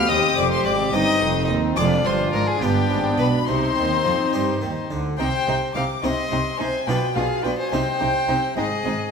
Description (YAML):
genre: classical, baroque-style concerto movement with solo episodes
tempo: 71 BPM (dotted quarters)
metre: 6/8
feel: straight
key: C minor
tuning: A4 = 442 Hz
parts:
  - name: rich violin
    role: melody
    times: 0.0-9.1 s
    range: G4 to F5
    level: -26 LUFS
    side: left 3 dB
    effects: none
  - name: warm chamber violin section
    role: melody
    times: 0.0-9.1 s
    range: Eb5 to Eb6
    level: -25 LUFS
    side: left 4 dB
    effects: none
  - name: rich chamber violin section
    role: second line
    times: 0.0-8.9 s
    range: D4 to G4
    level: -27 LUFS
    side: left 2 dB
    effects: none
  - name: dark chamber viola section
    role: accompaniment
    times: 0.0-8.9 s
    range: B3 to D4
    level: -28 LUFS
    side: equal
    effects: none
  - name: harpsichord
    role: accompaniment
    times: 0.0-9.1 s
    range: Eb2 to G4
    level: -29 LUFS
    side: right 1 dB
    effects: none
  - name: rich chamber cello section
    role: bass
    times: 0.0-8.9 s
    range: Eb2 to G3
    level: -29 LUFS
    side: right 4 dB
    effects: none
  - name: warm studio double bass section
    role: bass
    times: 0.0-8.9 s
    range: F1 to G2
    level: -27 LUFS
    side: right 4 dB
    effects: none
room: wet scoring stage reverb, RT60 1.8 s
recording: none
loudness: -19 LUFS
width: side -6 dB against mid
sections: 0.0-5.2 A section; 5.2-9.1 A section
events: none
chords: 0.1 Cm; 1.8 Dm7b5/F; 2.6 G7; 3.5 Cm; 6.9 Bdim7; 7.7 Cm; 8.6 Ab